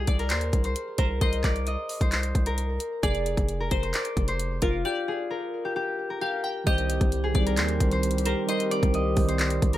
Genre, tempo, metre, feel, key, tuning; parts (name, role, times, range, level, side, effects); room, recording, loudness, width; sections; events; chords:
hip hop, trap; 132 BPM; 4/4; half-time; C minor; A4 = 439 Hz
concert harp; melody; 0.0-9.8 s; F4 to Eb5; -29 LUFS; left 2 dB; tape echo
glassy wavetable pluck; second line; 0.0-9.4 s; Bb4 to G5; -34 LUFS; equal; chorus, tape echo
distorted 808-style bass; bass; 0.0-9.8 s; F1 to Eb2; -28 LUFS; equal; distortion
trap drum kit; drums; 0.1-9.8 s; handclaps, hi-hat, kick drum; -26 LUFS; equal
mellow tine electric piano; accompaniment; 6.6-9.8 s; Eb3 to D5; -29 LUFS; right 5 dB; slow stereo tremolo
hollow soft pad; sustained chords; 6.7-9.8 s; Eb3 to G4; -35 LUFS; left 2 dB; chorus
light reverb; -24 LUFS; side -14 dB against mid
0.0-6.7 A section; 6.7-9.8 B section
break 4.8-6.7
0.0 Cm; 3.0 Fm; 4.8 N.C.; 6.7 Cm